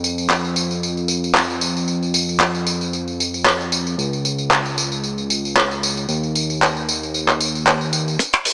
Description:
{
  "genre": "nu-disco, nu disco",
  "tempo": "114 BPM",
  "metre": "4/4",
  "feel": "swing 55% on 16ths",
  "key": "unclear",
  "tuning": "A4 = 440 Hz",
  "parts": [
    { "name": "fat analog bass", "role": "bass", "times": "0.0-8.2 s", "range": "Db2 to F2", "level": "-26 LUFS", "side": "equal", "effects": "tube saturation" },
    { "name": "damped 70s drum kit", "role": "drums", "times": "0.0-8.5 s", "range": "finger snaps, handclaps, hi-hat, tambourine", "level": "-21 LUFS", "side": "equal", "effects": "high-pass filter on hats, high-pass filter on perc, high-pass filter on snare, high-pass filter on room" },
    { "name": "kick drum", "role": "drums", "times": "8.2-8.3 s", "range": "none", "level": "-25 LUFS", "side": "equal", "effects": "high-pass filter on kick, high-pass filter on snare, high-pass filter on room" }
  ],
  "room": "moderate lush hall reverb, RT60 2.1 s",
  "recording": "small speaker sound",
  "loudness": "-20 LUFS",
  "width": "mono",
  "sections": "0.0-8.2 A section",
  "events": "none",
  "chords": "none"
}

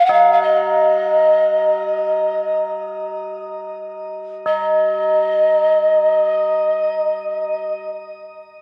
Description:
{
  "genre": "world meditative, free-time meditation music",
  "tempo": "free time",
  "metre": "none",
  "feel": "none",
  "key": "unclear",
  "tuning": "A4 = 440 Hz",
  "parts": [
    { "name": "mellow hollow pan flute", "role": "melody", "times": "0.0-7.9 s", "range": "Eb5 to Gb5", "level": "-18 LUFS", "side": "equal", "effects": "shimmer reverb, diffuse ambient delay" },
    { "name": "tubular bells", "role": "texture", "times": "0.1-7.9 s", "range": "Eb4", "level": "-25 LUFS", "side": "equal", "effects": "shimmer reverb" }
  ],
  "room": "wet cathedral reverb, RT60 4.7 s",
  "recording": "dark, warm production",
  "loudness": "-17 LUFS",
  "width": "mono",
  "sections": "0.0-4.5 A section; 4.5-8.3 B section",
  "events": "none",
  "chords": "none"
}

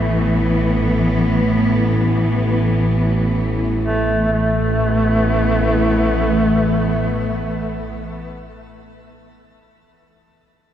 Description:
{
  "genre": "dark ambient drone",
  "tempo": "free time",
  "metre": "none",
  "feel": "none",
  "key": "unclear",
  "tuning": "A4 = 440 Hz",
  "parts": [
    { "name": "warm duduk", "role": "melody", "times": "0.0-7.9 s", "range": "A3", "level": "-22 LUFS", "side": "right 1 dB", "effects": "shimmer reverb, tape echo" },
    { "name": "dark symphonic cello section", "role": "sustained chords", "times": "0.0-8.2 s", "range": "A2 to B3", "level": "-19 LUFS", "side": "equal", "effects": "shimmer reverb" },
    { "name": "analog drone", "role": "drone", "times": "0.0-8.0 s", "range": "A1 to A2", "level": "-20 LUFS", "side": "equal", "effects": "chorus" }
  ],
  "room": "wet plate reverb, RT60 2.9 s",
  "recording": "echo-heavy mix",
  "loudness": "-15 LUFS",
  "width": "side -10 dB against mid",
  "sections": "0.0-4.3 A section; 4.3-8.1 B section",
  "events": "none",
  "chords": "0.0 A5"
}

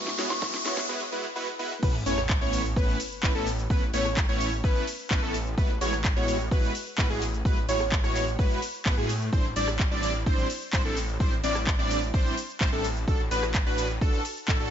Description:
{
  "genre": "EDM, festival progressive house",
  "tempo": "128 BPM",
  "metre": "4/4",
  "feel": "straight",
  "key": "A major",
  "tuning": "A4 = 440 Hz",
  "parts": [
    { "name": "mellow electric guitar", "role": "accompaniment", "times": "0.0-0.9 s", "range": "G#2 to F#4", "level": "-42 LUFS", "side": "left 6 dB", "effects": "sidechain pumping, ping-pong delay" },
    { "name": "supersaw chords", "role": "riff", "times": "0.0-14.7 s", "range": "G3 to D5", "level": "-32 LUFS", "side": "right 1 dB", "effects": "sidechain pumping, ping-pong delay" },
    { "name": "wide detuned saw bass", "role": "bass", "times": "0.0-14.7 s", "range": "A1 to A2", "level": "-32 LUFS", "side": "equal", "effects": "chorus, sidechain pumping" },
    { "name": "riser and sub drop", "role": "sound effects", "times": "0.0-3.7 s", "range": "none", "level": "-34 LUFS", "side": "equal", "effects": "none" },
    { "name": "house drum kit", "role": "drums", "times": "0.1-14.6 s", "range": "crash cymbal, handclaps, hi-hat, rim click, shaker, snare drum", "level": "-33 LUFS", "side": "left 1 dB", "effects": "overdrive" },
    { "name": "soft synth bell", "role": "melody", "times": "0.3-0.5 s", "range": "C#6", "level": "-36 LUFS", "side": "equal", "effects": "chorus, ping-pong delay" },
    { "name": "electronic kick drum", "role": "drums", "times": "0.4-14.6 s", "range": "none", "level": "-25 LUFS", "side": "equal", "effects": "overdrive" },
    { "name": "wide unison lead", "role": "arpeggios", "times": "1.8-14.7 s", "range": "G#4 to D5", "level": "-31 LUFS", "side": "left 1 dB", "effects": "wide subtle chorus, sidechain pumping, ping-pong delay" }
  ],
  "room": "light reverb",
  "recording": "high-pass filter, nothing above 7.7 kHz",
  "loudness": "-24 LUFS",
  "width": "side -9 dB against mid",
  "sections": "0.0-1.8 A section; 1.8-14.7 B section",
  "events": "build-up 0.0-1.8; drum fill 0.0-0.9; riser 0.0-0.9; break 0.9-1.8; drop 1.8-14.7; impact 1.8-3.7",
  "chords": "0.0 Eadd9/A; 1.8 Aadd9; 5.6 Eadd9/A; 9.3 Cadd9/A; 13.1 D/A"
}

